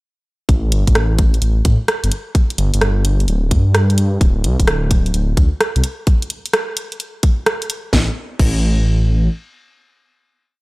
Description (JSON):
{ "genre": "UK garage, two-step garage", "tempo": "129 BPM", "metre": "4/4", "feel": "swing 66% on 16ths", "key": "unclear", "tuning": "A4 = 439 Hz", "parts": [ { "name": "dark detuned saw bass", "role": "bass", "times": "0.5-9.3 s", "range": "D1 to A2", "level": "-15 LUFS", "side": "equal", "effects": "none" }, { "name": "electronic kick drum", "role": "drums", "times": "0.5-8.6 s", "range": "none", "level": "-14 LUFS", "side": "equal", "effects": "studio reverb" }, { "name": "garage drum kit", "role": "drums", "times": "0.5-8.6 s", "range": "crash cymbal, hi-hat, rim click, snare drum", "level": "-20 LUFS", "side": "right 1 dB", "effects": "studio reverb" } ], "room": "little or no reverb", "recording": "dry, gritty hardware recording", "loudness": "-14 LUFS", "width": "side -23 dB against mid", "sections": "0.5-7.9 groove; 7.9-10.6 final note", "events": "none", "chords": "none" }